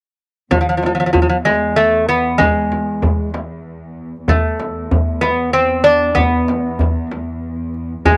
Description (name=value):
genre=Persian modal ensemble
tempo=96 BPM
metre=3/4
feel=straight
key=E dastgah homayun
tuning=A4 = 440 Hz
part: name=lute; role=melody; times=0.5-8.2 s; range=F3+45c to D4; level=-17 LUFS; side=equal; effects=cassette tape
part: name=muted studio cello section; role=drone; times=0.5-8.2 s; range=E2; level=-28 LUFS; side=equal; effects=cassette tape
part: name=frame drum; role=percussion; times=0.5-8.2 s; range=none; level=-26 LUFS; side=equal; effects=none
part: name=tombak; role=percussion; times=0.5-8.2 s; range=none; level=-21 LUFS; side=equal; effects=none
room=wet booth ambience, RT60 0.2 s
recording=home recording on cassette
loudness=-16 LUFS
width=mono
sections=0.5-8.2 A section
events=none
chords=none